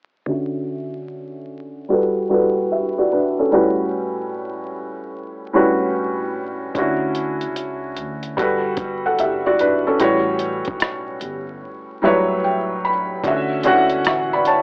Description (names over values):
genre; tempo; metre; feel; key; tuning
lo-fi hip hop; 74 BPM; 4/4; swing 65% on 16ths; D major; A4 = 441 Hz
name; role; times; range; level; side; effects
felt-muted upright piano; accompaniment; 0.3-14.6 s; A2 to C#6; -18 LUFS; equal; cassette tape, low-pass filter
upright bass; bass; 6.8-14.4 s; F#1 to D2; -34 LUFS; equal; none
dusty soul sampler-style drum kit; drums; 6.8-14.6 s; hi-hat, kick drum, rim click; -24 LUFS; equal; none
room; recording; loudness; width
light reverb; dry, gritty hardware recording, transformer saturation, vinyl crackle, AM radio sound; -17 LUFS; side -35 dB against mid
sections
0.3-13.2 A section; 13.2-14.6 B section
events
filter sweep on felt piano 0.3-13.2; felt piano fill 11.6-13.2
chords
0.3 Dmaj9; 1.9 Gmaj9; 3.5 A13; 6.8 Dmaj9; 8.4 Gmaj9; 10.0 A13; 13.2 Dmaj9